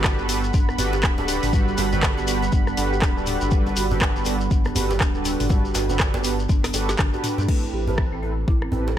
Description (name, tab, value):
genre	afro house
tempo	121 BPM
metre	4/4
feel	swing 60% on 16ths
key	unclear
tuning	A4 = 439 Hz
part	dark analog pad	sustained chords	0.0-7.4 s	G3 to B5	-29 LUFS	right 4 dB	chorus, sidechain pumping
part	folk marimba with medium mallets	arpeggios	0.0-9.0 s	D3 to A4	-29 LUFS	right 1 dB	sidechain pumping, low-pass filter, ping-pong delay
part	mellow synth brass	stabs	0.0-8.9 s	C4 to B4	-28 LUFS	right 3 dB	chorus, vintage 12-bit sampler grit, sidechain pumping, ping-pong delay
part	round analog bass	bass	0.0-9.0 s	D1 to G2	-27 LUFS	left 1 dB	sidechain pumping
part	afro-pop drum kit	drums	0.0-8.7 s	crash cymbal, handclaps, hi-hat, rim click, snare drum, toms	-27 LUFS	equal	none
part	electronic kick drum	drums	0.0-8.6 s	none	-21 LUFS	left 1 dB	none
part	shekere	percussion	0.0-7.5 s	none	-34 LUFS	left 5 dB	none
part	djembe	percussion	0.3-9.0 s	none	-32 LUFS	right 1 dB	none
room	digital ambience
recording	none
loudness	-19 LUFS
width	side -11 dB against mid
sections	0.0-7.5 A section; 7.5-9.0 B section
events	drop 0.0-7.5; drum fill 6.5-7.5; filter sweep on marimba 7.5-9.0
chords	0.0 Gmaj7; 7.5 Am7